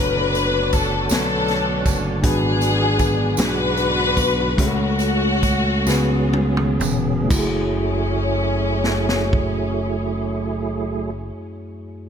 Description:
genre	slow gospel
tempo	40-53 BPM (dotted quarters)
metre	6/8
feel	straight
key	F# minor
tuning	A4 = 440 Hz
part	warm studio string section	melody	0.0-11.1 s	A3 to B4	-22 LUFS	left 3 dB	tape echo
part	mellow tine electric piano	accompaniment	0.0-12.1 s	F#2 to C#5	-25 LUFS	left 2 dB	none
part	tonewheel organ	sustained chords	0.0-11.1 s	D3 to C#5	-27 LUFS	right 6 dB	slow rotary speaker, chorus vibrato
part	slap bass	bass	0.0-11.3 s	E1 to C#2	-24 LUFS	equal	none
part	swinging big-band drum kit	drums	0.3-9.6 s	crash cymbal, hi-hat, kick drum, snare drum, toms	-23 LUFS	equal	none
part	tambourine	percussion	0.3-7.8 s	none	-33 LUFS	right 6 dB	none
room	light reverb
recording	none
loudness	-17 LUFS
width	side -7 dB against mid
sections	0.0-7.3 A section; 7.3-10.3 B section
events	slowing down 2.2-7.3; drum fill 5.9-7.3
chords	0.0 Bm9/F#; 2.2 G#m7b5; 4.6 F#m/C#; 5.9 C#7sus4; 7.3 F#m9

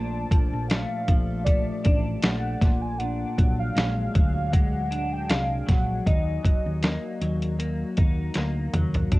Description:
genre	indie pop, bedroom pop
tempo	78 BPM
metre	4/4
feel	swing 55% on 16ths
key	unclear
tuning	A4 = 440 Hz
part	warm velvety synth lead	melody	0.0-7.6 s	D5 to A5	-32 LUFS	equal	analog chorus, cassette tape, analog delay
part	clean electric guitar	accompaniment	0.0-9.2 s	Bb2 to Eb4	-31 LUFS	left 2 dB	analog chorus, warbly pitch drift, cassette tape
part	ethereal airy pad	sustained chords	0.0-9.2 s	Gb3 to Bb5	-40 LUFS	left 1 dB	ensemble chorus, built-in reverb, phaser, cassette tape
part	hollow-body short-scale fingered electric bass	bass	0.0-9.2 s	A1 to Eb2	-28 LUFS	equal	none
part	lo-fi sampler-style drum kit	drums	0.3-9.2 s	hi-hat, kick drum, snare drum, toms	-22 LUFS	equal	cassette tape
room	little or no reverb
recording	home recording on cassette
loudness	-22 LUFS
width	side -20 dB against mid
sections	0.0-9.2 A section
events	drum fill 8.4-9.1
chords	0.0 Gm9/Bb; 2.6 Bb7b13; 6.1 Ebm

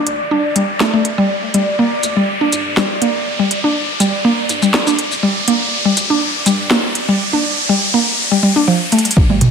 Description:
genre	minimal techno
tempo	122 BPM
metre	4/4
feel	swing 53% on 16ths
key	G minor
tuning	A4 = 443 Hz
part	punchy sub bass	bass	0.0-9.5 s	F1 to G2	-32 LUFS	equal	sidechain pumping, high-pass filter
part	riser and impact	sound effects	0.0-9.5 s	none	-19 LUFS	equal	none
part	bubbling stepped-filter texture	texture	0.0-7.2 s	D5	-24 LUFS	equal	chorus, built-in reverb, sidechain pumping
part	techno drum kit	drums	0.1-9.5 s	hi-hat, shaker, snare drum	-18 LUFS	equal	none
part	mallet-like synth pluck	riff	0.3-9.4 s	F3 to D4	-16 LUFS	equal	chorus, cassette tape, sidechain pumping, ping-pong delay
part	electronic kick drum	drums	9.2-9.3 s	none	-12 LUFS	equal	none
part	ride cymbal	drums	9.2-9.5 s	none	-32 LUFS	left 8 dB	high-pass filter on cymbals, high-pass filter on room
part	electronic congas and toms	percussion	9.3-9.5 s	none	-12 LUFS	right 2 dB	none
room	moderate digital room reverb, RT60 1.0 s, digital ambience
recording	none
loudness	-13 LUFS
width	side -6 dB against mid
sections	0.0-9.2 A section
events	build-up 0.0-9.2; riser 0.0-9.2; drum fill 8.9; impact 9.2-9.5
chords	0.0 G5

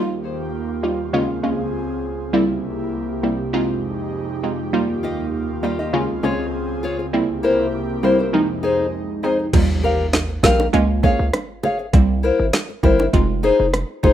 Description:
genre	dancehall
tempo	100 BPM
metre	4/4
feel	straight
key	F minor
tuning	A4 = 440 Hz
part	glassy wavetable pluck	accompaniment	0.0-14.1 s	Db3 to F4	-21 LUFS	right 2 dB	chorus, sidechain pumping, plate reverb
part	airy breathy pad	sustained chords	0.0-9.5 s	C2 to Ab4	-25 LUFS	right 1 dB	chorus, sidechain pumping, plate reverb
part	nylon-string guitar	arpeggios	5.0-14.1 s	Eb4 to F5	-20 LUFS	left 3 dB	ping-pong delay, plate reverb
part	hard-hitting 808-style bass	bass	9.5-14.1 s	F1 to Eb2	-20 LUFS	equal	none
part	island pop drum kit	drums	9.5-14.1 s	crash cymbal, hi-hat, kick drum, rim click, snare drum	-17 LUFS	equal	vintage 12-bit sampler grit
part	impact	sound effects	9.6-11.9 s	none	-32 LUFS	right 1 dB	none
part	bongos	percussion	10.1-14.1 s	none	-26 LUFS	right 3 dB	none
room	moderate studio reverb, RT60 0.6 s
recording	rough home demo mix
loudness	-17 LUFS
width	side -11 dB against mid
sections	0.0-9.5 A section; 9.5-14.1 B section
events	impact 9.5-11.9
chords	0.0 Ebadd9; 1.1 Bbm7/Db; 2.3 C7; 3.5 Fm7; 4.7 Ebadd9; 5.9 Bbm7/Db; 7.1 C7; 8.3 Fm7; 9.5 Ebadd9; 10.7 Bbm7/Db; 11.9 C7; 13.1 Fm7

